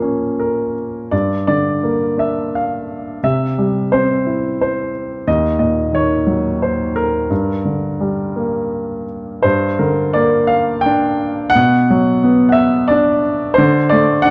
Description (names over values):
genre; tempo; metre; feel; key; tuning
classical, lyrical solo piano; 87 BPM; 3/4; uneven beats, rubato; unclear; A4 = 440 Hz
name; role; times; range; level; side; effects
clear baby grand piano; solo; 0.0-14.3 s; Eb2 to G5; -16 LUFS; equal; none
room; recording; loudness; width
moderate recital hall reverb, RT60 1.7 s; dark, warm production; -16 LUFS; mono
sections
0.0-9.4 A section; 9.4-14.3 B section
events
none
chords
0.0 Bbm; 1.1 Gm; 3.2 C; 5.3 Ebm; 7.3 Gm; 11.6 Bm; 13.6 D5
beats
0.39 | 1.12 1.84 2.54 | 3.23 3.93 4.61 | 5.27 5.94 6.62 | 7.30 8.00 8.72 | 9.45 10.15 10.86 | 11.55 12.24 12.91 | 13.59 14.26